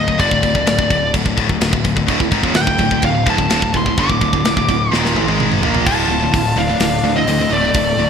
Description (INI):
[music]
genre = heavy metal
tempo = 127 BPM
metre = 4/4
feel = straight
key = D phrygian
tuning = A4 = 440 Hz
[part]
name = high-gain lead guitar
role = melody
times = 0.0-8.1 s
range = D5 to D6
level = -19 LUFS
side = left 1 dB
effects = distortion
[part]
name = high-gain distorted guitar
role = riff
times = 0.0-8.1 s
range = D2 to Bb3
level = -20 LUFS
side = left 10 dB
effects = distortion
[part]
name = fuzz picked electric bass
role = bass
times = 0.0-8.1 s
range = D1 to D2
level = -22 LUFS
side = equal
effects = overdrive
[part]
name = tight metal drum kit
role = drums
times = 0.1-7.9 s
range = crash cymbal, hi-hat, kick drum, snare drum, toms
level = -19 LUFS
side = equal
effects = none
[part]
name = tight distorted guitar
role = riff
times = 2.1-8.1 s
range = D2 to Bb3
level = -20 LUFS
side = right 12 dB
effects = distortion
[part]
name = high-gain lead guitar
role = second line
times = 5.9-8.1 s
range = A3 to F4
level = -25 LUFS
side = right 3 dB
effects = distortion
[sound]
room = light reverb, studio reverb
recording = bright 1980s-style digital production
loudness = -13 LUFS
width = side -7 dB against mid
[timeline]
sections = 0.0-5.9 A section; 5.9-8.1 B section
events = drum fill 4.9-5.9; half time 5.9-8.1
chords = 0.0 D5; 5.9 Dm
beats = | 0.20 0.67 1.14 1.61 | 2.08 2.56 3.03 3.50 | 3.97 4.44 4.92 5.39 | 5.86 6.33 6.80 7.27 | 7.75